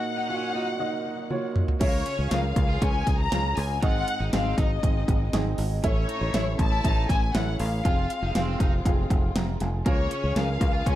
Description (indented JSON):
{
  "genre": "piano-driven pop",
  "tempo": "119 BPM",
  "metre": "4/4",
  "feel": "straight",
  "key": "Db major",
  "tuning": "A4 = 440 Hz",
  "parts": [
    { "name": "warm studio violin section", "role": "melody", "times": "0.0-11.0 s", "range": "Db5 to Bb5", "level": "-30 LUFS", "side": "left 4 dB", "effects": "none" },
    { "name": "dark upright piano", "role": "accompaniment", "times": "0.0-11.0 s", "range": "Ab2 to Bb5", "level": "-32 LUFS", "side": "right 2 dB", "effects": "none" },
    { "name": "warm studio string section", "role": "sustained chords", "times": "0.0-11.0 s", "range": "Bb2 to Ab4", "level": "-40 LUFS", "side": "left 3 dB", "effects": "none" },
    { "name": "crunchy overdriven guitar", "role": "riff", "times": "0.0-11.0 s", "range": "Bb3 to F4", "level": "-39 LUFS", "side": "right 5 dB", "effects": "none" },
    { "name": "pop drum kit", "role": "drums", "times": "1.3-11.0 s", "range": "crash cymbal, hi-hat, kick drum, snare drum, toms", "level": "-25 LUFS", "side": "equal", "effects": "overdrive" },
    { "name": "fingered electric bass", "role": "bass", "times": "1.8-11.0 s", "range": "F1 to Db2", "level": "-27 LUFS", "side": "equal", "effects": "none" }
  ],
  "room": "digital ambience",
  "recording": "dark, warm production",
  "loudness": "-23 LUFS",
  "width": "side -13 dB against mid",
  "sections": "0.0-1.8 A section; 1.8-11.0 B section",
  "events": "break 0.0-1.8; drum fill 1.3-1.8",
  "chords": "0.0 Ebmadd9/Bb; 1.8 Db; 3.8 Ab; 5.8 A; 7.8 Fm; 9.9 Db"
}